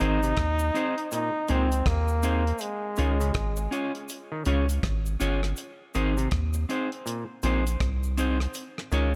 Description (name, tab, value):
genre	roots reggae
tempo	81 BPM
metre	4/4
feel	swing 61% on 16ths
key	unclear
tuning	A4 = 440 Hz
part	bright trombone	melody	0.0-4.1 s	Ab3 to Eb4	-32 LUFS	equal	tape echo
part	clean electric guitar	accompaniment	0.0-9.1 s	C4 to Db5	-33 LUFS	equal	spring reverb, tape echo
part	overdriven clav	arpeggios	0.0-9.1 s	Bb2 to Eb3	-37 LUFS	equal	none
part	soft dub sub bass	bass	0.0-9.2 s	G1 to Eb2	-28 LUFS	equal	none
part	damped 70s drum kit	drums	0.0-9.1 s	hi-hat, kick drum, rim click	-34 LUFS	equal	none
part	cabasa	percussion	0.2-9.1 s	none	-45 LUFS	equal	none
room	light reverb, small room ambience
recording	none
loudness	-27 LUFS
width	mono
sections	0.0-9.2 A section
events	none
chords	0.0 Ab; 2.6 Db; 5.6 Ab; 8.5 Db